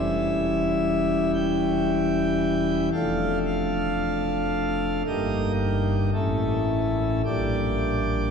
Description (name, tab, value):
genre	classical, chorale-style piece for pipe organ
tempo	53-59 BPM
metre	3/4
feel	rubato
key	D minor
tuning	A4 = 440 Hz
part	pipe organ, principal chorus	solo	0.0-8.3 s	E1 to G5	-22 LUFS	equal	none
room	wet cathedral reverb, RT60 4.6 s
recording	recorded in a church or concert hall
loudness	-22 LUFS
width	side -6 dB against mid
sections	0.0-8.3 A section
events	none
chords	0.0 C#dim/E; 2.9 Dm/F; 5.1 Eb/G; 6.1 A; 7.3 Gm/Bb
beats	0.84 1.88 | 2.94 4.01 5.07 | 6.14 7.25